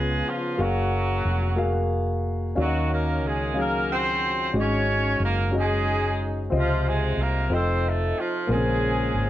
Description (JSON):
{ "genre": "slow gospel", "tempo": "61 BPM (dotted quarters)", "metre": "6/8", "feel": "straight", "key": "Db major", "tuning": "A4 = 440 Hz", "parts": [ { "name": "warm horn section", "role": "melody", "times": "0.0-9.3 s", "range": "F3 to Db5", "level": "-26 LUFS", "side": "right 1 dB", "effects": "none" }, { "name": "warm grand piano", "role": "accompaniment", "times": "0.0-9.3 s", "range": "Ab2 to F5", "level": "-27 LUFS", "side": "left 2 dB", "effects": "none" }, { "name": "hollow-body short-scale fingered electric bass", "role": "bass", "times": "0.0-9.3 s", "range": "F1 to Eb2", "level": "-26 LUFS", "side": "equal", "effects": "none" } ], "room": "light reverb", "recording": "none", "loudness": "-22 LUFS", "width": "side -13 dB against mid", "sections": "0.0-9.3 A section", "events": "none", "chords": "0.0 Db7; 0.6 Gbmaj9; 2.6 Ebm9; 4.5 Ab7sus4; 6.5 Dbmaj9; 7.5 F7; 8.5 Bbm9" }